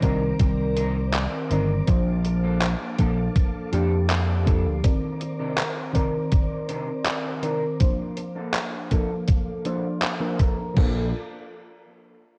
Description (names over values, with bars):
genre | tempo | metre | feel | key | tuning
vaporwave | 81 BPM | 4/4 | straight | Bb major | A4 = 442 Hz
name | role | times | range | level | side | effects
mellow FM electric piano | accompaniment | 0.0-11.1 s | Eb3 to D5 | -30 LUFS | equal | lush chorus, cassette tape, tape echo
soft string machine | sustained chords | 0.0-11.1 s | Bb3 to D6 | -41 LUFS | equal | ensemble chorus
electric guitar at the edge of break-up | riff | 0.0-11.1 s | C3 to Bb5 | -39 LUFS | equal | subtle chorus, low-pass filter, tape echo
vintage slap bass | bass | 0.0-4.8, 10.8-11.1 s | G1 to F2 | -26 LUFS | equal | none
detuned 8-bit digital drum machine | drums | 0.0-10.9 s | crash cymbal, handclaps, hi-hat | -31 LUFS | equal | vintage 12-bit sampler grit, studio reverb, gated reverb
electronic kick drum | drums | 0.0-10.9 s | none | -23 LUFS | equal | vintage 12-bit sampler grit, studio reverb
room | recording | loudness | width
light reverb | cassette tape | -24 LUFS | mono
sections
0.0-10.8 A section; 10.8-12.4 B section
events
filter sweep on string machine 0.0-10.8; filter sweep on clean electric guitar 0.0-10.8; clean electric guitar fill 3.7-4.8, 9.3-10.8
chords
0.0 Cm9; 1.9 Bbmaj7; 4.8 Cm9; 7.8 Bbmaj7